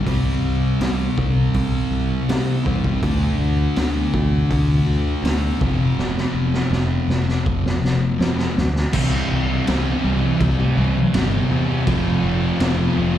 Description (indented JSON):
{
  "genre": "quiet-loud alternative rock",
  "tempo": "81 BPM",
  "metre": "4/4",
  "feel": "straight",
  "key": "unclear",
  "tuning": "A4 = 438 Hz",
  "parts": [
    { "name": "thick fuzz guitar", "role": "riff", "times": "0.0-13.2 s", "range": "F2 to F4", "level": "-24 LUFS", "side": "left 8 dB", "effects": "distortion" },
    { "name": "thick fuzz guitar", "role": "riff", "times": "0.0-13.2 s", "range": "F2 to G4", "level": "-24 LUFS", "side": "right 7 dB", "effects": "distortion, slapback echo" },
    { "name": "modern bright picked electric bass", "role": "bass", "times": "0.1-13.2 s", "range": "F1 to C3", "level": "-22 LUFS", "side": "equal", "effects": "none" },
    { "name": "raw garage drum kit", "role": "drums", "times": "0.1-12.8 s", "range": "crash cymbal, hi-hat, kick drum, snare drum", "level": "-23 LUFS", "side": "equal", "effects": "none" },
    { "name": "thick fuzz guitar", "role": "riff", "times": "8.9-13.2 s", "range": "F2 to C4", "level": "-25 LUFS", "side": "right 1 dB", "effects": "distortion" }
  ],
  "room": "light reverb",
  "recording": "live gig heard through the venue's PA, club reverb",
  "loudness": "-17 LUFS",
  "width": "side -11 dB against mid",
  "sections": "0.0-8.9 A section; 8.9-13.2 B section",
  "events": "drum fill 6.0-8.9",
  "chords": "0.1 C5; 3.0 D5; 5.6 F5; 8.9 C; 11.9 F"
}